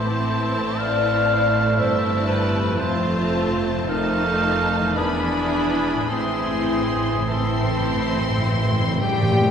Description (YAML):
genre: classical, slow romantic movement for symphony orchestra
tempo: 50-61 BPM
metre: 3/4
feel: rubato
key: A minor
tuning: A4 = 440 Hz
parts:
  - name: rich studio violin section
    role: melody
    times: 0.0-9.5 s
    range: G5 to C6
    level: -29 LUFS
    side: left 2 dB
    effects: none
  - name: clear clarinet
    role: second line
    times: 0.0-9.5 s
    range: A3 to G4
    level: -29 LUFS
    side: equal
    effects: none
  - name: mellow hollow large flute ensemble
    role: second line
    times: 0.0-9.5 s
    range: E4 to D5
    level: -28 LUFS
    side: left 3 dB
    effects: none
  - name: rich studio violin section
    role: second line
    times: 0.0-9.5 s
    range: Eb4 to G4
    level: -32 LUFS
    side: left 1 dB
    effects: none
  - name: warm cor anglais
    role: second line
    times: 0.0-8.4 s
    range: G#4 to F5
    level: -26 LUFS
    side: right 2 dB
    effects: none
  - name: clear studio viola section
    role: accompaniment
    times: 0.0-9.3 s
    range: C4 to Eb4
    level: -31 LUFS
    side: right 1 dB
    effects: none
  - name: dark bassoon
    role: accompaniment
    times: 0.0-9.2 s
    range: Eb3 to F3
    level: -32 LUFS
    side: right 2 dB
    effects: none
  - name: mellow French horn section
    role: sustained chords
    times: 0.0-9.5 s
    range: E3 to F4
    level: -31 LUFS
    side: equal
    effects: none
  - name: concert harp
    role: arpeggios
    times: 0.0-9.5 s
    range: E2 to Eb5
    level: -33 LUFS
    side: left 4 dB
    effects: none
  - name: clear studio double bass section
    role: bass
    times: 0.0-9.3 s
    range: E1 to A1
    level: -28 LUFS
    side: right 2 dB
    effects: none
  - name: rich studio cello section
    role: bass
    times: 0.0-9.5 s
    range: E2 to G3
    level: -28 LUFS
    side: right 1 dB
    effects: none
  - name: timpani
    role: percussion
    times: 0.0-1.2, 6.1-9.5 s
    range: A2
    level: -26 LUFS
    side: equal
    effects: none
room: wet church reverb, RT60 3.3 s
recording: minimal, uncompressed stereo recording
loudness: -19 LUFS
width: side -7 dB against mid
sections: 0.0-9.5 A section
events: timpani fill 6.1-9.5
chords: 0.0 Am; 2.8 F; 3.9 F7; 5.0 E7; 6.1 Am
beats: 0.78 1.78 | 2.79 3.89 4.97 | 6.11 7.28 8.43